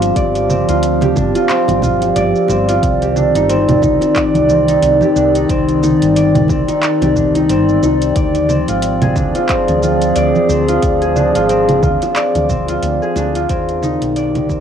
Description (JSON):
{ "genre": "organic downtempo", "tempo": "90 BPM", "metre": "4/4", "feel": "swing 57% on 16ths", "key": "C minor", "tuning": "A4 = 440 Hz", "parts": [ { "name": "warbly tape-like pad", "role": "sustained chords", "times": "0.0-14.6 s", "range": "Eb3 to D5", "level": "-16 LUFS", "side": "right 1 dB", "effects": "chorus, built-in reverb, sidechain pumping, plate reverb" }, { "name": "concert harp", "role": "arpeggios", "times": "0.0-14.6 s", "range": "C4 to D5", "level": "-16 LUFS", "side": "left 1 dB", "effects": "analog delay, plate reverb" }, { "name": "woody fretless electric bass", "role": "bass", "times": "0.0-14.6 s", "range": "G1 to Eb2", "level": "-20 LUFS", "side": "equal", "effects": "tube saturation, sidechain pumping" }, { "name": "afro-pop drum kit", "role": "drums", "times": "0.0-14.6 s", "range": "congas, handclaps, hi-hat, shaker", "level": "-21 LUFS", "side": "right 2 dB", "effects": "studio reverb, cassette tape" }, { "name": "electronic kick drum", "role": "drums", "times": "0.2-14.6 s", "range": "none", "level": "-21 LUFS", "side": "equal", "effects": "studio reverb, cassette tape" }, { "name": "bongos and congas", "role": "percussion", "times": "1.0-14.6 s", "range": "none", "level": "-22 LUFS", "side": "right 3 dB", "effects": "none" } ], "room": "wet booth ambience, RT60 0.3 s", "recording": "home recording on cassette", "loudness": "-11 LUFS", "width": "side -8 dB against mid", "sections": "0.0-14.6 A section", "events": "fade-out 11.7-14.6", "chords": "0.0 G7sus4; 2.8 Cmadd9; 8.2 Dm7b5; 13.5 Cmadd9" }